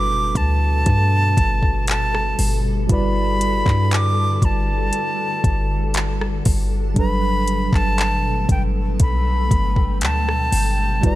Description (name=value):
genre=contemporary R&B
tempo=59 BPM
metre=4/4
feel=straight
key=G major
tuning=A4 = 440 Hz
part: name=breathy silver concert flute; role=melody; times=0.0-11.2 s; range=G5 to D6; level=-23 LUFS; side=right 1 dB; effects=tape echo
part: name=mellow tine electric piano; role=accompaniment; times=0.0-11.2 s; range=F#3 to D5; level=-27 LUFS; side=right 2 dB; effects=medium stereo tremolo
part: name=granular cloud pad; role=sustained chords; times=0.0-11.2 s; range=B2 to G5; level=-28 LUFS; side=left 2 dB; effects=built-in reverb
part: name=warm 808-style bass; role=bass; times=0.0-11.2 s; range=F#1 to G2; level=-20 LUFS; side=equal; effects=none
part: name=smooth R&B drum kit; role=drums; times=0.4-11.2 s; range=handclaps, hi-hat, kick drum, rim click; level=-20 LUFS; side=equal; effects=none
room=digital ambience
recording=none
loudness=-16 LUFS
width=side -16 dB against mid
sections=0.0-11.2 A section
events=none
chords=0.0 Gmaj9; 2.9 Em9/G; 7.0 Gmaj9